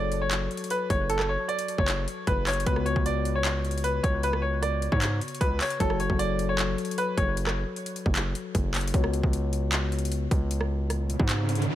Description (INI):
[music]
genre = hip hop, trap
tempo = 153 BPM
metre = 4/4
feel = half-time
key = F# minor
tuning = A4 = 438 Hz
[part]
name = bright grand piano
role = melody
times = 0.0-7.3 s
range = A4 to D5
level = -29 LUFS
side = equal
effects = low-pass filter, ping-pong delay
[part]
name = mellow tine electric piano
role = accompaniment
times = 0.0-11.8 s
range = C#3 to C#5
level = -33 LUFS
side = left 5 dB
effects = lush chorus, low-pass filter
[part]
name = distorted 808-style bass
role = bass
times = 0.0-11.7 s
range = F#1 to G#2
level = -28 LUFS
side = equal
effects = distortion
[part]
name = trap drum kit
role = drums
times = 0.1-11.7 s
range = handclaps, hi-hat, kick drum, rim click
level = -29 LUFS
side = equal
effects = overdrive
[part]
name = riser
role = sound effects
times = 11.0-11.8 s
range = none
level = -31 LUFS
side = right 3 dB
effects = none
[sound]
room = digital ambience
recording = none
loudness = -24 LUFS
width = side -13 dB against mid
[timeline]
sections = 0.0-11.8 A section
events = riser 11.0-11.8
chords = 0.0 F#m; 2.7 C#7sus4; 5.8 F#m; 8.9 C#7sus4